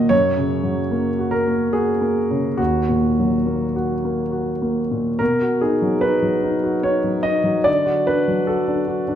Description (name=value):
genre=neoclassical minimalist piano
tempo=71 BPM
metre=3/4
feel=uneven beats, rubato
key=unclear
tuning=A4 = 440 Hz
part: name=warm concert grand piano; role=solo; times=0.0-9.2 s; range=D#2 to F#5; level=-17 LUFS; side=equal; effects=none
room=wet recital hall reverb, RT60 1.7 s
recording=recorded in a church or concert hall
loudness=-17 LUFS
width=side -10 dB against mid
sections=0.0-5.2 A section; 5.2-9.2 B section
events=none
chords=0.1 F#; 2.6 D#m; 5.2 B; 7.7 D